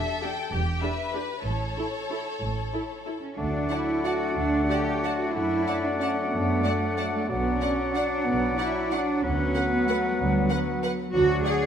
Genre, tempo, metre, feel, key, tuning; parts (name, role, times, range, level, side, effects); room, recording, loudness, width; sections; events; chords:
classical, orchestral ballroom waltz; 172-218 BPM; 3/4; rubato; D major; A4 = 437 Hz
warm studio violin section; melody; 0.0-11.5 s; B4 to A5; -37 LUFS; left 4 dB
rich symphonic violin section; second line; 0.0-11.5 s; G4 to F#5; -36 LUFS; left 2 dB
rich symphonic viola section; accompaniment; 0.2-11.5 s; D4 to D5; -36 LUFS; right 1 dB
rich symphonic double bass section; bass; 0.5-11.4 s; E1 to F#2; -31 LUFS; right 2 dB
warm symphonic cello section; bass; 0.5-11.7 s; E2 to G#4; -28 LUFS; right 2 dB
clear oboe; second line; 3.4-11.7 s; B4 to D5; -34 LUFS; left 1 dB
silver concert flute; second line; 3.4-11.7 s; F#5; -33 LUFS; left 5 dB
clear bassoon; accompaniment; 3.4-11.7 s; F#3 to A3; -32 LUFS; equal
clear French horn section; sustained chords; 3.4-11.7 s; F#3 to D4; -31 LUFS; left 4 dB
moderate scoring stage reverb, RT60 1.6 s; -24 LUFS; side -8 dB against mid
0.0-3.4 A section; 3.4-11.7 B section
0.0 Em7; 1.4 A; 3.4 D; 5.3 D/F#; 7.3 Bm; 9.2 Bm/D; 11.1 D